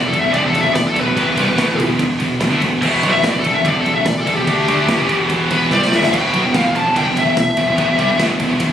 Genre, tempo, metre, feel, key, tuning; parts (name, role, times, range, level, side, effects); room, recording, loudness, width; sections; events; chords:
heavy metal; 145 BPM; 4/4; straight; E minor; A4 = 440 Hz
high-gain lead guitar; melody; 0.0-8.2 s; G4 to A5; -18 LUFS; left 2 dB; distortion, tape echo
heavy high-gain guitar; riff; 0.0-8.7 s; E2 to D4; -20 LUFS; right 7 dB; distortion
scooped high-gain guitar; riff; 0.0-8.7 s; E2 to D4; -22 LUFS; left 8 dB; distortion
growling picked electric bass; bass; 0.0-8.7 s; E1 to D2; -22 LUFS; equal; overdrive
modern studio drum kit; drums; 0.1-8.7 s; crash cymbal, kick drum, ride cymbal, snare drum; -21 LUFS; equal
heavy high-gain guitar; riff; 6.1-8.7 s; E2 to G3; -23 LUFS; equal; distortion
light reverb; recorded on a phone in the room, studio reverb; -13 LUFS; side -9 dB against mid
0.0-8.7 A section
lead electric guitar solo 0.0-8.7; drum fill 5.7-6.1
0.0 Em